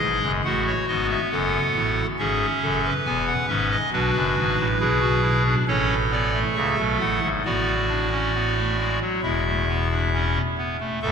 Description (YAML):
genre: classical, baroque-style 4-part fugue for pipe organ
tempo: 68 BPM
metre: 4/4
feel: straight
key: unclear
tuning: A4 = 440 Hz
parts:
  - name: pipe organ, clarinet reed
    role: solo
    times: 0.0-11.1 s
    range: C#1 to G#5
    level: -20 LUFS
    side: equal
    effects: none
room: wet cathedral reverb, RT60 5.6 s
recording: minimal, uncompressed stereo recording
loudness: -20 LUFS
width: side -6 dB against mid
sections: 0.0-11.0 A section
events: none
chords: 0.4 F#m; 2.2 E; 3.9 E7; 5.7 A; 7.4 Bm7/A; 9.2 E5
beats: | 0.44 1.31 2.18 3.06 | 3.93 4.80 5.67 6.56 | 7.45 8.35 9.24 10.13 | 11.02